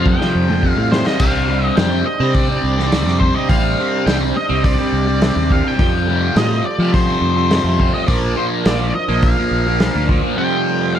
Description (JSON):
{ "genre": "psychedelic rock", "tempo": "105 BPM", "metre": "4/4", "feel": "straight", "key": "F mixolydian", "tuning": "A4 = 444 Hz", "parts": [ { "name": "octave-fuzz lead guitar", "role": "melody", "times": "0.0-11.0 s", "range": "C5 to G5", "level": "-22 LUFS", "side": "left 2 dB", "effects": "distortion, tape echo" }, { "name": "tonewheel organ", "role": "sustained chords", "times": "0.0-11.0 s", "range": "F3 to C5", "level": "-26 LUFS", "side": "right 5 dB", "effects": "slow rotary speaker, overdrive" }, { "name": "fuzz guitar", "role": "riff", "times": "0.0-11.0 s", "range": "F2 to C4", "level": "-19 LUFS", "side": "equal", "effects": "distortion, phaser" }, { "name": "fingered electric bass", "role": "bass", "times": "0.0-10.2 s", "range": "A1 to F3", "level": "-19 LUFS", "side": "equal", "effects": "none" }, { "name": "vintage drum kit", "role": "drums", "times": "0.1-10.2 s", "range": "crash cymbal, hi-hat, kick drum, snare drum, toms", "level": "-18 LUFS", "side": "equal", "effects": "none" } ], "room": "light reverb, small room ambience", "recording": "none", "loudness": "-14 LUFS", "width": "side -10 dB against mid", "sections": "0.0-10.4 A section", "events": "drum fill 0.1-1.2", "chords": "0.0 Fadd9; 1.2 Csus2; 5.8 Fadd9; 8.1 Bb; 10.4 Fadd9", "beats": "0.06 0.63 | 1.21 1.78 2.35 2.93 | 3.50 4.07 4.65 5.22 | 5.79 6.37 6.94 7.51 | 8.09 8.66 9.23 9.81 | 10.38 10.96" }